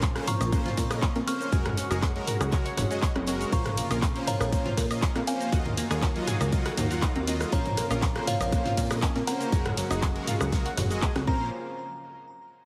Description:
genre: progressive house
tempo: 120 BPM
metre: 4/4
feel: straight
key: Bb minor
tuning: A4 = 440 Hz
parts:
  - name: glassy synth bell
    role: melody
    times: 0.0-11.5 s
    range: Db5 to F6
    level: -38 LUFS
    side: equal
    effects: chorus, digital delay
  - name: lush unison pad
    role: sustained chords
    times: 0.0-11.5 s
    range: C3 to Gb4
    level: -40 LUFS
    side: equal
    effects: chorus, vintage 12-bit sampler grit, sidechain pumping
  - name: tight sequenced synth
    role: arpeggios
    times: 0.0-11.5 s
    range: Gb3 to Db5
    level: -38 LUFS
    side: equal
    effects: chorus, phaser, sidechain pumping, delay
  - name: soft supersaw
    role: stabs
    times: 0.0-11.5 s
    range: Gb3 to Gb5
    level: -38 LUFS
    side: equal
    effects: sidechain pumping, delay
  - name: plucky analog bass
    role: bass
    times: 0.0-11.5 s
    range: Gb1 to Bb2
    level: -34 LUFS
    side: equal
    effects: sidechain pumping
  - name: electronic kick drum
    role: drums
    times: 0.0-11.4 s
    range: none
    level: -30 LUFS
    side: equal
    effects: none
  - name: house drum kit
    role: drums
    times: 0.0-11.3 s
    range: handclaps, hi-hat, ride cymbal, shaker, woodblock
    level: -37 LUFS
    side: equal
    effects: sidechain pumping on hats, sidechain pumping on perc, sidechain pumping on cymbals
  - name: vintage brush drum kit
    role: drums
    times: 0.0-11.3 s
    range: hi-hat, snare drum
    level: -46 LUFS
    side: equal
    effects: none
  - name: punchy analog drum machine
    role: percussion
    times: 0.2-11.4 s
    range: congas, rim click, toms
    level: -35 LUFS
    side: equal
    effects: sidechain pumping on snare, sidechain pumping on toms, sidechain pumping on perc
room: light reverb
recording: heavily compressed radio sound, multiband compression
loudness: -27 LUFS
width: mono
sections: 0.0-11.5 A section; 11.5-12.7 B section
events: drop 0.0-11.5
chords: 0.0 Bbmadd9; 1.5 Gbadd9; 3.5 Bbmadd9; 5.5 Ebmadd9; 7.5 Bbmadd9; 9.5 Gbadd9; 11.3 Bbmadd9; 11.5 N.C.

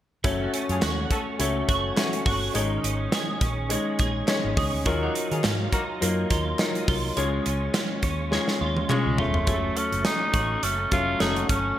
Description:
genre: 1980s-style pop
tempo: 104 BPM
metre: 4/4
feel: swing 55% on 16ths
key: unclear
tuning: A4 = 438 Hz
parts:
  - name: warm grand piano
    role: accompaniment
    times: 0.2-11.8 s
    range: Gb3 to Db5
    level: -28 LUFS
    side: left 3 dB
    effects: none
  - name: twelve-string electric guitar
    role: riff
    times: 0.2-11.8 s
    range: Eb3 to Ab4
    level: -30 LUFS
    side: right 3 dB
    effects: ensemble chorus, digital delay
  - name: vintage muted fingered electric bass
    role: bass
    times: 0.2-11.7 s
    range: Fb1 to Eb3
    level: -29 LUFS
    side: equal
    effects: none
  - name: modern studio drum kit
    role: drums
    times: 0.2-11.6 s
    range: hi-hat, kick drum, snare drum, toms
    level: -27 LUFS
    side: right 1 dB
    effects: gated reverb
  - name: clear horn section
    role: stabs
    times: 0.4-1.2, 5.0-5.8 s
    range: A3 to Bb4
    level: -35 LUFS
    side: left 2 dB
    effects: digital delay
  - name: group handclap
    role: percussion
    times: 0.8-9.0 s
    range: none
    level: -40 LUFS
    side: left 3 dB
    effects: none
  - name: breathy tenor saxophone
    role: melody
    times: 8.9-11.8 s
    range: Ab3 to F4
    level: -26 LUFS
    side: equal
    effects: none
room: moderate plate reverb, RT60 1.8 s, studio ambience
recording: bright 1980s-style digital production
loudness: -22 LUFS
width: side -12 dB against mid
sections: 0.2-9.5 A section; 9.5-11.8 B section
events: drum fill 8.3-9.5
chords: 0.2 Gbm; 2.6 Absus4; 4.9 Ebmadd9; 7.2 Db; 9.5 Gbm

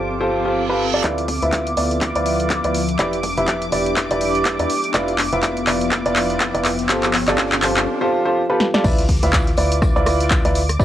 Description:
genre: piano house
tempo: 123 BPM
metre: 4/4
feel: swing 58% on 16ths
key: D dorian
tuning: A4 = 439 Hz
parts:
  - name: analog string pad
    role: sustained chords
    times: 0.0-10.8 s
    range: D6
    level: -28 LUFS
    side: right 2 dB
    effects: ensemble chorus, phaser, sidechain pumping, cassette tape
  - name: clear upright piano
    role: riff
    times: 0.0-10.8 s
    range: E4 to E5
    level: -20 LUFS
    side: equal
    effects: sidechain pumping, low-pass filter, cassette tape, tape echo
  - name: organ-like FM bass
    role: bass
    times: 0.0-10.8 s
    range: E1 to E2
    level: -26 LUFS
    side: equal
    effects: sidechain pumping
  - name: ethereal airy pad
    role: texture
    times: 0.0-7.9 s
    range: F3 to F5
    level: -26 LUFS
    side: left 2 dB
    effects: ensemble chorus, built-in reverb, sidechain pumping, cassette tape
  - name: reverse cymbal, riser and sub drop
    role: sound effects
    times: 0.3-10.8 s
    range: none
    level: -31 LUFS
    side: right 1 dB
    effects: none
  - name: electronic kick drum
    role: drums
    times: 1.0-10.8 s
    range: none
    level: -21 LUFS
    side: equal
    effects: high-pass filter on kick, studio reverb
  - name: house drum kit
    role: drums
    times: 1.0-10.8 s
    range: crash cymbal, handclaps, hi-hat, rim click, snare drum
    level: -22 LUFS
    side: equal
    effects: studio reverb
  - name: deep reggae drum kit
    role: drums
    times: 8.8-10.8 s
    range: hi-hat, snare drum, tambourine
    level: -38 LUFS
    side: equal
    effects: none
room: moderate booth ambience, RT60 0.2 s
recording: home recording on cassette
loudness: -16 LUFS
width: side -12 dB against mid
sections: 0.0-1.0 A section; 1.0-8.8 B section; 8.8-10.8 C section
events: filter sweep 0.0-1.0; reverse cymbal 0.3-1.0; build-up 1.0-8.8; drum fill 1.0-7.9, 8.6; filter sweep on upright piano 1.0-8.8; drop 8.8-10.8; impact 8.8-10.8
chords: 0.0 G9sus4; 1.0 Dm69; 3.0 Em7; 4.7 Dm69/F; 6.9 G9sus4; 8.8 Dm69

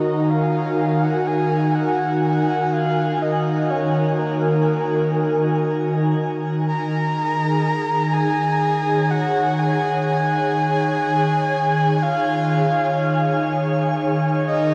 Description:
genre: ambient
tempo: 62 BPM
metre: 4/4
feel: straight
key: unclear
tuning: A4 = 436 Hz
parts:
  - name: breathy flute-like synth lead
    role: melody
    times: 0.0-14.7 s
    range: Bb4 to Bb5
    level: -25 LUFS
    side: equal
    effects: subtle chorus, delay
  - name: airy breathy pad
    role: sustained chords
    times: 0.0-14.7 s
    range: Eb3 to Bb5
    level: -22 LUFS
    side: equal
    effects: chorus
room: wet shimmer reverb, RT60 8.2 s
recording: dark, warm production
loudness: -20 LUFS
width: mono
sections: 0.0-14.7 A section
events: fade-in on soft synth lead 0.0-14.7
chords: 0.0 Ebm; 6.2 Db/Eb

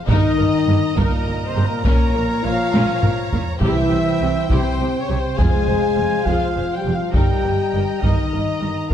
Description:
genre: cinematic, epic orchestral film score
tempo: 102 BPM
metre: 3/4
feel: straight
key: unclear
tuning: A4 = 439 Hz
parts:
  - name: warm symphonic violin section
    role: second line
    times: 0.0-8.9 s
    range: C5 to Bb5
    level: -29 LUFS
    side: equal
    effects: none
  - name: warm symphonic violin section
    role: melody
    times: 0.1-8.9 s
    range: Bb4 to Ab5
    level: -32 LUFS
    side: left 2 dB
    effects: none
  - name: rich symphonic viola section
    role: accompaniment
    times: 0.1-8.9 s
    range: Db4 to C5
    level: -30 LUFS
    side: left 1 dB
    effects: none
  - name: mellow French horn section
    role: sustained chords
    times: 0.1-8.9 s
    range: Bb3 to Ab4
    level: -23 LUFS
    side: left 7 dB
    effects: none
  - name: warm trombone section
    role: sustained chords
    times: 0.1-8.9 s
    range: Bb2 to Ab3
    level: -26 LUFS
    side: right 5 dB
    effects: none
  - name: warm trumpet section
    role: stabs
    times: 0.1-8.9 s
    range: Bb4 to Ab5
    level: -26 LUFS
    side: right 1 dB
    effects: none
  - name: rich symphonic cello section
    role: bass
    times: 0.1-8.9 s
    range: F2 to C3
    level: -25 LUFS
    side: right 2 dB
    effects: none
  - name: warm symphonic double bass section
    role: bass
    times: 0.1-8.9 s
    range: F1 to C2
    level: -25 LUFS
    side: right 2 dB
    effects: none
  - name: taiko ensemble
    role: drums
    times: 0.1-8.9 s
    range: none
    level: -20 LUFS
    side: equal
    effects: none
  - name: timpani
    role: percussion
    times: 3.6-6.2 s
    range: F2 to C3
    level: -28 LUFS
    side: equal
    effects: none
room: wet scoring stage reverb, RT60 1.6 s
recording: none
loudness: -16 LUFS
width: side -9 dB against mid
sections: 0.0-8.9 A section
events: drum fill 2.7-3.6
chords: 0.1 Eb/G; 1.9 Bbm; 3.6 C; 5.4 Fm; 7.1 Eb/G

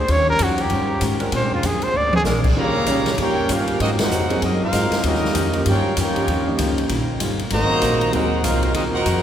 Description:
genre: jazz, big band swing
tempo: 194 BPM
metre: 4/4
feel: swing 61% on 8ths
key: Eb major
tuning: A4 = 440 Hz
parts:
  - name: mellow trumpet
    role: melody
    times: 0.0-2.2 s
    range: F4 to D5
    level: -23 LUFS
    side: equal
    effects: none
  - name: upright bass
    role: bass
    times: 0.0-9.2 s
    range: G1 to Bb2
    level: -23 LUFS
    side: equal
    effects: none
  - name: vintage hollow-body jazz guitar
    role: accompaniment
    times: 0.1-9.2 s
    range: Bb2 to Bb4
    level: -28 LUFS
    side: left 2 dB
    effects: none
  - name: swinging big-band drum kit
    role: drums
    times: 0.1-9.1 s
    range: crash cymbal, hi-hat, kick drum, ride cymbal, snare drum, toms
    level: -25 LUFS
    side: equal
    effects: none
  - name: warm concert grand piano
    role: accompaniment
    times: 0.3-8.3 s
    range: F3 to Db5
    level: -29 LUFS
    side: right 2 dB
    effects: none
  - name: warm saxophone section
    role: sustained chords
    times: 1.2-2.4 s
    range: Ab3 to Bb4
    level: -34 LUFS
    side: right 1 dB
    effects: none
  - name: clear trumpet section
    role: melody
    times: 2.6-9.2 s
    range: C4 to Bb5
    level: -22 LUFS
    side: equal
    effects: none
  - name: clear trombone section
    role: second line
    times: 2.6-9.2 s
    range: Db3 to G4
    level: -24 LUFS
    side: right 1 dB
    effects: none
room: wet cathedral reverb, RT60 6.7 s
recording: recorded in a church or concert hall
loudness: -17 LUFS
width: side -10 dB against mid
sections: 0.0-2.6 A section; 2.6-9.2 B section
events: trumpet solo 0.0-2.6; drum fill 1.9-2.3; band accent 4.0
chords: 0.1 Eb9; 1.3 Bb9; 2.6 Eb9; 3.8 Ab9; 5.0 Eb9; 7.5 Ab9

